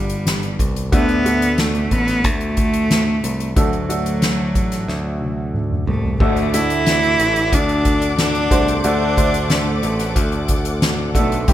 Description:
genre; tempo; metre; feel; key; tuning
piano-driven pop; 91 BPM; 4/4; straight; unclear; A4 = 440 Hz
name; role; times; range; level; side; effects
clear cello; melody; 0.0-11.5 s; F#3 to E4; -20 LUFS; equal; none
clear upright piano; accompaniment; 0.0-11.5 s; C3 to D5; -24 LUFS; right 1 dB; none
modern bright picked electric bass; bass; 0.0-11.5 s; G1 to D2; -23 LUFS; equal; none
soft-mallet drum kit; drums; 0.1-11.5 s; crash cymbal, hi-hat, kick drum, snare drum, toms; -20 LUFS; equal; none
warm studio string section; sustained chords; 6.2-11.5 s; G3 to D6; -27 LUFS; left 2 dB; none
room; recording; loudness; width
small room ambience; rough home demo mix; -15 LUFS; side -12 dB against mid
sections
0.0-6.2 A section; 6.2-11.5 B section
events
drum fill 4.9-6.2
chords
0.0 G; 0.9 D

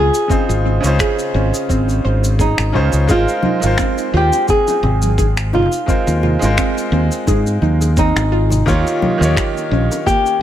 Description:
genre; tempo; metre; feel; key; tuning
sunset chillout; 86 BPM; 4/4; swing 55% on 16ths; unclear; A4 = 440 Hz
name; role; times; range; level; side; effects
flamenco guitar; melody; 0.0-10.4 s; Eb4 to Ab4; -19 LUFS; equal; vintage 12-bit sampler grit, analog delay
bright grand piano; accompaniment; 0.0-10.4 s; Db3 to Db5; -22 LUFS; equal; auto-pan, analog delay
soft round pluck; arpeggios; 0.0-10.4 s; Bb3 to C5; -23 LUFS; right 1 dB; wide subtle chorus, analog delay
fingered electric bass; bass; 0.0-9.9 s; Ab1 to Ab2; -16 LUFS; equal; none
shaker and finger snaps; drums; 0.1-10.4 s; none; -24 LUFS; left 1 dB; none
electronic kick drum; drums; 0.3-10.2 s; none; -18 LUFS; equal; none
congas and bongos; percussion; 3.4-10.0 s; none; -24 LUFS; left 2 dB; none
room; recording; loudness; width
light reverb, small room ambience; echo-heavy mix; -13 LUFS; side -11 dB against mid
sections
0.0-10.4 A section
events
none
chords
0.0 Dbmaj7; 3.1 Ab6; 8.7 Eb7

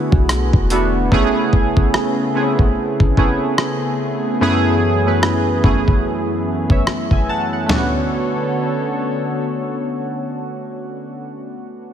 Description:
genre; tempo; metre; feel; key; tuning
contemporary R&B; 73 BPM; 4/4; swing 58% on 16ths; B dorian; A4 = 440 Hz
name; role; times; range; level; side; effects
warm analog keys; accompaniment; 0.0-11.9 s; F#2 to A5; -19 LUFS; right 1 dB; chorus
warm analog pad; sustained chords; 0.0-11.2 s; F#2 to C#5; -24 LUFS; left 2 dB; lush chorus, sidechain pumping
warm 808-style bass; bass; 0.1-1.1 s; E1 to B1; -18 LUFS; equal; none
dusty soul sampler-style drum kit; drums; 0.1-7.9 s; hi-hat, kick drum, rim click, snare drum, toms; -17 LUFS; equal; overdrive
room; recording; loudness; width
light reverb; none; -15 LUFS; side -9 dB against mid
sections
0.0-7.7 A section; 7.7-11.0 B section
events
none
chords
0.0 E7sus4; 1.1 Amaj9; 4.4 F#m11; 7.7 Bm9

